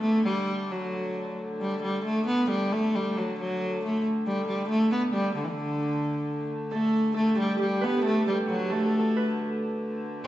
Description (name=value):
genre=medieval dance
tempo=90 BPM (dotted quarters)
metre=6/8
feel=straight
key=D major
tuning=A4 = 440 Hz
part: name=rich viola da gamba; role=melody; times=0.0-10.3 s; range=D3 to B3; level=-25 LUFS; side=equal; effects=none
part: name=warm hurdy-gurdy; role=drone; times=0.0-10.3 s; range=D3 to A3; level=-35 LUFS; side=left 1 dB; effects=none
part: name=Celtic harp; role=second line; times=6.7-10.3 s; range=F#4 to B4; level=-30 LUFS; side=right 2 dB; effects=none
room=wet recital hall reverb, RT60 1.8 s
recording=recorded in a church or concert hall, nothing above 7.9 kHz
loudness=-25 LUFS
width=side -14 dB against mid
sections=0.0-6.7 A section; 6.7-10.3 B section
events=none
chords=none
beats=| 0.02 0.69 | 1.36 2.03 | 2.70 3.37 | 4.04 4.71 | 5.38 6.04 | 6.71 7.37 | 8.04 8.70 | 9.37 10.03